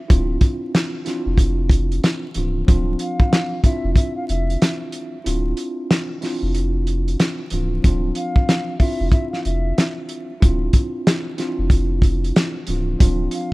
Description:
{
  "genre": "hip hop, boom-bap hip-hop",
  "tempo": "93 BPM",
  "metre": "4/4",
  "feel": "swing 60% on 16ths",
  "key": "D minor",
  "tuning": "A4 = 443 Hz",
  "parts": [
    { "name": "mellow tine electric piano", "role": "accompaniment", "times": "0.1-13.5 s", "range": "E3 to F4", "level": "-26 LUFS", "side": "right 1 dB", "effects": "fast stereo tremolo, cassette tape, high-pass filter, low-pass filter" },
    { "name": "soft dub sub bass", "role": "bass", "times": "0.1-13.3 s", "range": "C#1 to F1", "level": "-21 LUFS", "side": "equal", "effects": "none" },
    { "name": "warm soul drum kit", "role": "drums", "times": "0.1-13.5 s", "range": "hi-hat, kick drum, snare drum", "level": "-17 LUFS", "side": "equal", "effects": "none" },
    { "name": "mellow hollow silver concert flute", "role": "melody", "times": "3.0-13.5 s", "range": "E5 to F5", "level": "-30 LUFS", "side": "left 2 dB", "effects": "high-pass filter, low-pass filter" }
  ],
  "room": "studio reverb",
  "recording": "rough home demo mix, vinyl crackle",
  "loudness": "-17 LUFS",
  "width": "side -21 dB against mid",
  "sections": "0.0-13.5 A section",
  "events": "break 5.3-7.8",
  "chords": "0.0 Dm9"
}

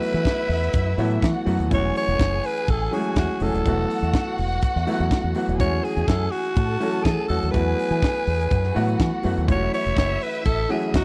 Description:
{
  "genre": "disco",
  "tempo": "124 BPM",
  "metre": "4/4",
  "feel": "straight",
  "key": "unclear",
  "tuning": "A4 = 441 Hz",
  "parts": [
    { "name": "growling alto saxophone", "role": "melody", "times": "0.0-11.0 s", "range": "F#4 to C#5", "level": "-28 LUFS", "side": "equal", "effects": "none" },
    { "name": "warm studio string section", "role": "second line", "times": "0.0-11.0 s", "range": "D#4 to A5", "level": "-33 LUFS", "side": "equal", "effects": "none" },
    { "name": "clear concert grand piano", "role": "accompaniment", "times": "0.0-11.0 s", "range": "E3 to G#4", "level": "-29 LUFS", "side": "equal", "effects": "none" },
    { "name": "tight funk drum kit", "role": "drums", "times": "0.0-11.0 s", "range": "hi-hat, kick drum, snare drum", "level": "-24 LUFS", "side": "equal", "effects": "none" },
    { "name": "fingered electric bass with an envelope filter", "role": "bass", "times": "0.1-11.0 s", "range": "D#1 to E3", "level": "-27 LUFS", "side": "equal", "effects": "none" }
  ],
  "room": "little or no reverb",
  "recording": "dry, close 1970s-style studio recording",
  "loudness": "-22 LUFS",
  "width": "mono",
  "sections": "0.0-11.0 A section",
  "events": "none",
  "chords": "0.0 B7sus4/E; 1.7 F#m7/E; 3.7 B7sus4/E; 5.6 F#m7/E; 7.5 B7sus4/E; 9.5 F#m7/E"
}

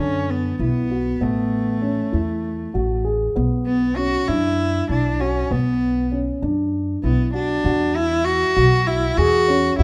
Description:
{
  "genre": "contemporary instrumental, chamber music in an uneven meter",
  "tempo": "196 BPM (eighths)",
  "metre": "7/8",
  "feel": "straight",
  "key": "B dorian",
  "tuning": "A4 = 442 Hz",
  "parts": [
    { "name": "rich cello", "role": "melody", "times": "0.0-9.8 s", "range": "A3 to F#4", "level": "-24 LUFS", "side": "equal", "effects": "none" },
    { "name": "dark concert grand piano", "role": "arpeggios", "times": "0.0-9.8 s", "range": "D3 to G#4", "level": "-25 LUFS", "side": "equal", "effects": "none" },
    { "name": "upright bass", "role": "bass", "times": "0.0-9.8 s", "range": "A1 to F#2", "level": "-26 LUFS", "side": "equal", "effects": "none" }
  ],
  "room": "moderate recital hall reverb, RT60 1.5 s",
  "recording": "none",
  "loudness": "-20 LUFS",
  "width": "mono",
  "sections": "0.0-7.6 A section; 7.6-9.8 B section",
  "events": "none",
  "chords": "0.0 Bm; 1.2 Amaj9; 3.4 Bm; 7.6 E"
}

